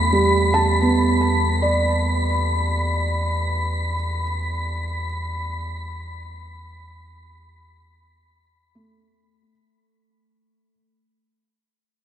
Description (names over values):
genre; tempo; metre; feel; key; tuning
ambient; free time; none; none; unclear; A4 = 443 Hz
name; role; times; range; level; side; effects
felt-muted upright piano; arpeggios; 0.0-10.7 s; G3 to B5; -22 LUFS; right 3 dB; tape echo
warm sub bass; bass; 0.0-9.4 s; E2; -24 LUFS; equal; none
wind-like tuned noise texture; texture; 0.0-9.5 s; B5 to B6; -25 LUFS; left 2 dB; built-in reverb
room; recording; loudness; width
wet lush hall reverb, RT60 2.9 s; none; -19 LUFS; side -10 dB against mid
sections
0.0-9.5 A section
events
fade-out 0.0-9.5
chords
0.0 Gadd9/E